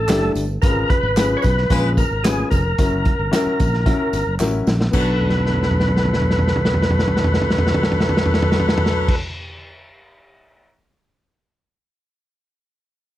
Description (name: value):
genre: uptempo 1960s-style soul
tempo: 112 BPM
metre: 4/4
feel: straight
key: B minor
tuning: A4 = 440 Hz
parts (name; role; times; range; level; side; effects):
- percussive tonewheel organ; melody; 0.0-9.2 s; G#4 to C#5; -22 LUFS; equal; overdrive, fast rotary speaker, plate reverb
- fingered electric bass; bass; 0.0-9.2 s; E#1 to B1; -22 LUFS; equal; none
- clear upright piano; accompaniment; 0.1-9.2 s; B3 to B4; -24 LUFS; left 3 dB; none
- vintage drum kit; drums; 0.1-10.7 s; crash cymbal, hi-hat, kick drum, snare drum, toms; -19 LUFS; equal; none
- congas; percussion; 0.1-9.2 s; none; -34 LUFS; right 1 dB; none
- handclaps and tambourine; percussion; 0.1-9.2 s; none; -35 LUFS; right 3 dB; none
- warm horn section; second line; 1.7-9.2 s; F#3 to B4; -26 LUFS; left 2 dB; none
room: light reverb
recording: dark, warm production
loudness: -16 LUFS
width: side -14 dB against mid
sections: 0.0-4.9 A section; 4.9-9.2 B section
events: drum fill 4.4-4.9, 5.2-9.1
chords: 0.0 A7sus4; 0.6 C#7/G#; 2.8 F#7; 4.9 Bm7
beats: 0.09 | 0.63 1.17 1.70 2.24 | 2.78 3.32 3.86 4.39 | 4.93 5.47 6.00 6.54 | 7.08 7.61 8.15 8.68